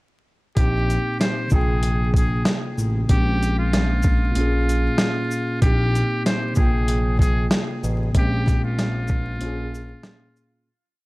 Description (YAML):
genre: hip hop, boom-bap hip-hop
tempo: 95 BPM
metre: 4/4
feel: swing 56% on 16ths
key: Bb dorian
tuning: A4 = 443 Hz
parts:
  - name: trumpet with metal mute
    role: melody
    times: 0.6-10.6 s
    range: F4 to C5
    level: -28 LUFS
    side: equal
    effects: high-pass filter, low-pass filter, dub echo
  - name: mellow tine electric piano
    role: accompaniment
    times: 0.6-10.7 s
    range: Bb2 to G5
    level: -26 LUFS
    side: equal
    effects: slow stereo tremolo, cassette tape, high-pass filter, low-pass filter
  - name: smooth synth bass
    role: bass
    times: 0.6-9.9 s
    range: A1 to Bb1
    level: -22 LUFS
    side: equal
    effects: none
  - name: boom bap sampler-style drum kit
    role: drums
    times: 0.6-10.5 s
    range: hi-hat, kick drum, shaker, snare drum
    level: -20 LUFS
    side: equal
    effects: none
room: little or no reverb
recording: echo-heavy mix, vinyl crackle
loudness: -18 LUFS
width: side -21 dB against mid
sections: 0.6-10.7 hook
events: fade-out 8.1-10.7; break 9.4-10.7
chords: 0.6 Cm/Bb; 1.5 Fmadd9/Bb; 3.1 Bbm7; 4.4 Db/Bb; 5.6 Cm/Bb; 6.6 Fmadd9/Bb; 8.1 Bbm7; 9.4 Db/Bb